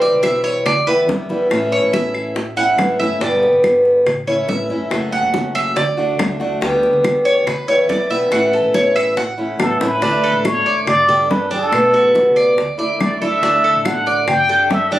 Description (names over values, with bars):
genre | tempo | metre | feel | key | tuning
latin, Cuban son and guajira | 141 BPM | 4/4 | straight | D major | A4 = 440 Hz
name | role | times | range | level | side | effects
fingerpicked acoustic archtop guitar | accompaniment | 0.0-15.0 s | B2 to G4 | -16 LUFS | equal | none
Cuban tres | arpeggios | 0.0-15.0 s | D4 to F#5 | -20 LUFS | right 1 dB | none
upright bass | bass | 0.0-15.0 s | F#1 to F#2 | -31 LUFS | equal | none
bongos | percussion | 0.0-15.0 s | none | -24 LUFS | left 2 dB | none
congas | percussion | 0.0-15.0 s | none | -27 LUFS | right 1 dB | none
claves | percussion | 0.2-14.5 s | none | -26 LUFS | left 1 dB | none
trumpet with plunger mute | melody | 9.6-15.0 s | A4 to G5 | -15 LUFS | equal | none
room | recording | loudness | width
moderate studio reverb, RT60 0.5 s | recorded on a phone in the room, studio reverb, compression | -13 LUFS | side -14 dB against mid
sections
0.0-10.0 A section; 10.0-15.0 B section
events
Cuban tres solo 0.0-10.0; drum fill 9.6-10.0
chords
0.0 C; 0.7 Em; 1.5 A; 3.2 G; 4.1 A; 4.9 F#m; 5.8 D; 6.6 G/D; 7.5 Em; 8.3 A; 10.0 Dsus2; 10.9 Gsus2; 11.7 Bm7; 12.6 Dsus2; 14.3 Gsus2